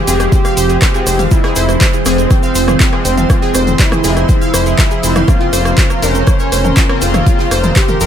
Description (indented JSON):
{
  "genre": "melodic techno",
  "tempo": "121 BPM",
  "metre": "4/4",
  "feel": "straight",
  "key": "F harmonic minor",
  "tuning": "A4 = 436 Hz",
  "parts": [
    { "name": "wide unison lead", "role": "melody", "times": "0.0-8.1 s", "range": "C4 to G4", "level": "-17 LUFS", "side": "right 1 dB", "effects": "ensemble chorus, sidechain pumping, dub echo" },
    { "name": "evolving wavetable pad", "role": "sustained chords", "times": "0.0-8.1 s", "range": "F3 to C6", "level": "-22 LUFS", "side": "right 2 dB", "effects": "ensemble chorus, built-in reverb, sidechain pumping" },
    { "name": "analog pluck", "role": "arpeggios", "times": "0.0-8.1 s", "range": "F4 to F5", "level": "-21 LUFS", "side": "equal", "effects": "chorus, sidechain pumping, ping-pong delay" },
    { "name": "sync-sweep polysynth", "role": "stabs", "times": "0.0-8.1 s", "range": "Db3 to C5", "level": "-21 LUFS", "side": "left 2 dB", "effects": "wide subtle chorus, cassette tape, sidechain pumping, ping-pong delay" },
    { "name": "dark detuned saw bass", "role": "bass", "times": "0.1-8.1 s", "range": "F1", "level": "-16 LUFS", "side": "equal", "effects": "tube saturation, sidechain pumping" },
    { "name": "punchy analog drum machine", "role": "drums", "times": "0.1-8.1 s", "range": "handclaps, hi-hat, rim click, toms", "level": "-18 LUFS", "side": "left 1 dB", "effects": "overdrive, sidechain pumping on hats, sidechain pumping on toms, sidechain pumping on cymbals" },
    { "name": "unplugged drum kit", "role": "drums", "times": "0.1-8.1 s", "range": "hi-hat, snare drum", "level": "-31 LUFS", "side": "right 3 dB", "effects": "none" },
    { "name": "tube shaker", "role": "percussion", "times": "0.1-8.1 s", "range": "none", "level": "-24 LUFS", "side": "right 4 dB", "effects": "none" },
    { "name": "electronic kick drum", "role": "drums", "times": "0.3-7.9 s", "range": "none", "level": "-12 LUFS", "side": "equal", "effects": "overdrive" }
  ],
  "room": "light reverb, digital ambience",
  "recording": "none",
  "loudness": "-9 LUFS",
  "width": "side -9 dB against mid",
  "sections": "0.0-8.1 A section",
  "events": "none",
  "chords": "0.0 Fm; 5.3 Bbmadd9/F",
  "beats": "0.32 0.82 | 1.31 1.81 2.31 2.80 | 3.30 3.79 4.29 4.79 | 5.28 5.78 6.27 6.77 | 7.26 7.76"
}